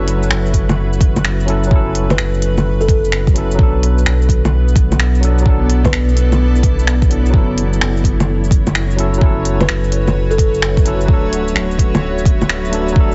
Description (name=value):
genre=future garage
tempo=128 BPM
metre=4/4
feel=swing 66% on 16ths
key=F# minor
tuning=A4 = 440 Hz
part: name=barky tine electric piano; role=accompaniment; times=0.0-13.1 s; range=F#3 to A4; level=-24 LUFS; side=equal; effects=sidechain pumping, delay
part: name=granular cloud pad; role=sustained chords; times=0.0-13.1 s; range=B3 to E5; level=-26 LUFS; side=equal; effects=built-in reverb, vintage 12-bit sampler grit, sidechain pumping
part: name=warm sub bass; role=bass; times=0.0-13.1 s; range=D1 to B1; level=-19 LUFS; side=equal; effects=sidechain pumping
part: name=organic electronic drum kit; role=drums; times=0.1-13.1 s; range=bongos, finger snaps, hi-hat, shaker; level=-22 LUFS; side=equal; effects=overdrive
part: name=electronic kick drum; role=drums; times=0.5-13.1 s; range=none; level=-16 LUFS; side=equal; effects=none
part: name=buzzing kalimba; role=melody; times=2.1-6.1, 9.6-10.9 s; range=A4 to B4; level=-26 LUFS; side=equal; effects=delay
room=light reverb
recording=heavily compressed radio sound, nothing above 7.8 kHz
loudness=-14 LUFS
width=mono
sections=0.0-13.1 A section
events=none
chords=0.0 F#m7; 3.6 Bm7; 7.3 F#m7; 11.1 D